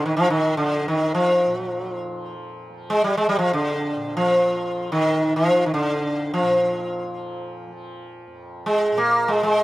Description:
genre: indian classical, Hindustani.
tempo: free time.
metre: none.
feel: none.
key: F raga bageshri.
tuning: A4 = 440 Hz.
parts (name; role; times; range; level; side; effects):
sitar; melody; 0.0-9.6 s; D3 to Bb3; -19 LUFS; equal; none.
tanpura; drone; 0.0-9.6 s; F2 to F3; -37 LUFS; equal; none.
room: small room reverb.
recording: rough home demo mix.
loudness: -19 LUFS.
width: side -17 dB against mid.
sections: 0.0-9.6 A section.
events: none.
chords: none.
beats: free time.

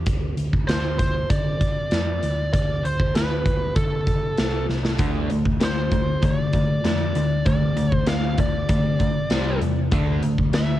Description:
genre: hard rock.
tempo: 97 BPM.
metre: 4/4.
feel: straight.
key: D minor.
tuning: A4 = 440 Hz.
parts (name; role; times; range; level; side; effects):
hollow-body short-scale picked electric bass; bass; 0.0-10.8 s; C2 to D3; -26 LUFS; equal; none.
big rock drum kit; drums; 0.1-10.7 s; hi-hat, kick drum, snare drum; -23 LUFS; equal; cassette tape.
bluesy overdriven lead guitar; melody; 0.7-10.8 s; A4 to F5; -28 LUFS; equal; distortion, cassette tape, tape echo.
overdriven semi-hollow guitar; riff; 5.0-10.8 s; C3 to D4; -26 LUFS; left 7 dB; cassette tape.
overdriven semi-hollow guitar; riff; 5.0-10.8 s; C3 to D4; -28 LUFS; right 6 dB; phaser, cassette tape.
room: little or no reverb.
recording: home recording on cassette.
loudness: -19 LUFS.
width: side -13 dB against mid.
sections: 0.0-10.8 A section.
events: drum fill 4.7-5.0.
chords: 0.1 N.C.; 4.4 Am/C; 5.0 D5; 9.3 C5; 9.9 D5.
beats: | 0.07 0.68 1.30 1.92 | 2.53 3.15 3.76 4.38 | 5.00 5.61 6.23 6.84 | 7.46 8.07 8.69 9.31 | 9.92 10.54.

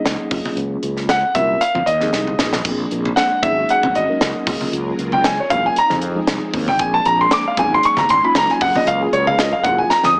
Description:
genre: electric jazz fusion.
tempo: 116 BPM.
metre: 4/4.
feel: straight.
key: Gb lydian.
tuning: A4 = 440 Hz.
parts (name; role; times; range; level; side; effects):
warm grand piano; melody; 0.0-10.1 s; Ab4 to Eb6; -18 LUFS; equal; none.
mellow tine electric piano; accompaniment; 0.0-9.9 s; F3 to Bb4; -27 LUFS; equal; phaser.
fretless electric bass; bass; 0.0-10.2 s; Fb1 to F2; -28 LUFS; equal; none.
crisp fusion drum kit; drums; 0.1-10.2 s; hi-hat, kick drum, snare drum, splash cymbal; -25 LUFS; equal; none.
congas; percussion; 0.3-10.2 s; none; -30 LUFS; equal; none.
string machine, violas; sustained chords; 2.7-10.2 s; F3 to Bb4; -32 LUFS; equal; none.
room: light reverb, small room ambience.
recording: small speaker sound.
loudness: -17 LUFS.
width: mono.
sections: 0.0-10.2 A section.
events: grand piano solo 0.0-10.2; drum fill 2.1-2.6, 9.9.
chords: 0.3 Gbmaj9; 1.6 Fm7; 2.6 Bb7; 3.4 Ab9sus4; 4.5 Gbmaj9; 5.8 Fm7; 6.8 Bb7; 7.6 Ab9sus4; 8.6 Gbmaj9.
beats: 0.05 | 0.57 1.09 1.61 2.13 | 2.65 3.17 3.69 4.21 | 4.72 5.24 5.76 6.28 | 6.80 7.32 7.83 8.35 | 8.87 9.39 9.90.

